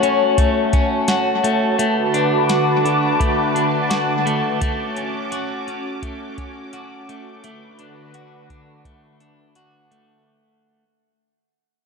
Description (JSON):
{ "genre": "dream pop", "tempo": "85 BPM", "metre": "4/4", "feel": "straight", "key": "unclear", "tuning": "A4 = 440 Hz", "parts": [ { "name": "lush unison pad", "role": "sustained chords", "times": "0.0-10.2 s", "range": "D3 to D6", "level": "-20 LUFS", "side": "left 1 dB", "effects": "chorus, phaser" }, { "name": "electric guitar at the edge of break-up", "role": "arpeggios", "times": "0.0-10.8 s", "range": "A3 to F#4", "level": "-22 LUFS", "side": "left 2 dB", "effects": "wide subtle chorus, dub echo" }, { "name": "soft vintage rhythm box", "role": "drums", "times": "0.0-10.1 s", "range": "hi-hat, kick drum, snare drum", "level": "-22 LUFS", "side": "equal", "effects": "overdrive, dub echo" } ], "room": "moderate echo chamber reverb, RT60 2.2 s", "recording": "echo-heavy mix", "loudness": "-16 LUFS", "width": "side -4 dB against mid", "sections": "0.0-10.3 A section", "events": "fade-out 0.0-10.3", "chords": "0.0 A6; 1.8 Bm7/D; 4.6 Dmaj7; 7.4 Bm7/D" }